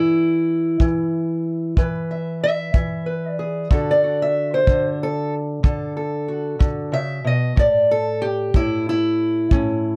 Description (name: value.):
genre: acoustic country blues, solo or duo.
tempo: 62 BPM (dotted quarters).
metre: 12/8.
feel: straight.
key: A major.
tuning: A4 = 441 Hz.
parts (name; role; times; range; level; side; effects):
fingerpicked steel-string acoustic guitar; melody; 0.0-10.0 s; A2 to E5; -21 LUFS; equal; none.
kick drum; drums; 0.8-9.7 s; none; -21 LUFS; equal; none.
room: little or no reverb.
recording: close, detailed microphones.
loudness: -20 LUFS.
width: mono.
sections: 0.0-10.0 A section.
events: steel-string acoustic guitar solo 0.0-10.0.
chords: 0.0 E5; 3.7 D; 7.6 A5.